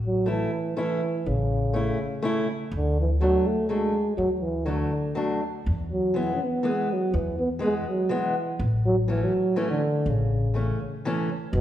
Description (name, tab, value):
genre	alpine folk, alpine dance band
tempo	122 BPM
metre	3/4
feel	straight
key	A major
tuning	A4 = 443 Hz
part	upright bass	bass	0.0-11.6 s	E1 to E2	-27 LUFS	equal	none
part	mellow euphonium	melody	0.1-11.6 s	B2 to C#4	-25 LUFS	right 1 dB	none
part	fingerpicked steel-string acoustic guitar	accompaniment	0.3-11.3 s	E3 to E4	-29 LUFS	left 1 dB	none
room	wet recital hall reverb, RT60 1.6 s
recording	recorded in a church or concert hall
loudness	-23 LUFS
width	side -11 dB against mid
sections	0.0-11.5 A section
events	none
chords	0.0 A; 2.7 D; 5.7 E; 8.6 A